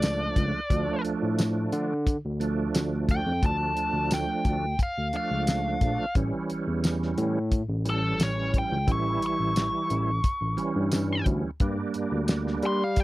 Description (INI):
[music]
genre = straight-eighth soul blues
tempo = 88 BPM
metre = 4/4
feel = straight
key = D harmonic minor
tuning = A4 = 440 Hz
[part]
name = biting lead guitar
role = melody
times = 0.0-13.0 s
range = A4 to C#6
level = -29 LUFS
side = left 1 dB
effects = overdrive
[part]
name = bright tonewheel organ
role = accompaniment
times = 0.0-12.8 s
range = E3 to E4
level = -30 LUFS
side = right 3 dB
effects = slow rotary speaker, chorus vibrato
[part]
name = barky tine electric piano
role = bass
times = 0.0-13.0 s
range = A1 to G3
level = -29 LUFS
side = left 1 dB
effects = overdrive
[part]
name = cloth-damped thuddy drum kit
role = drums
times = 0.0-13.0 s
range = hi-hat, kick drum, snare drum, tambourine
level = -26 LUFS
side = equal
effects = none
[sound]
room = little or no reverb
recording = dry, close 1970s-style studio recording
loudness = -24 LUFS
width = side -18 dB against mid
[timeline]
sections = 0.0-13.0 A section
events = none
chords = 0.0 Dm; 6.2 A7; 11.6 Gm